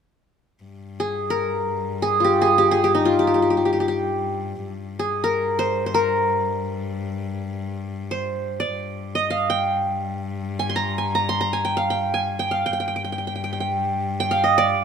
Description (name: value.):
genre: turkish.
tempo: free time.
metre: none.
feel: none.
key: G makam kurdi.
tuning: A4 = 440 Hz.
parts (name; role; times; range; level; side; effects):
warm cello; drone; 0.6-14.8 s; G2; -30 LUFS; left 4 dB; none.
qanun; melody; 1.0-14.8 s; Eb4 to C6; -20 LUFS; right 1 dB; none.
room: light reverb.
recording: minimal, uncompressed stereo recording.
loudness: -20 LUFS.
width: side -7 dB against mid.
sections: 0.6-14.8 A section.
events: none.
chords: none.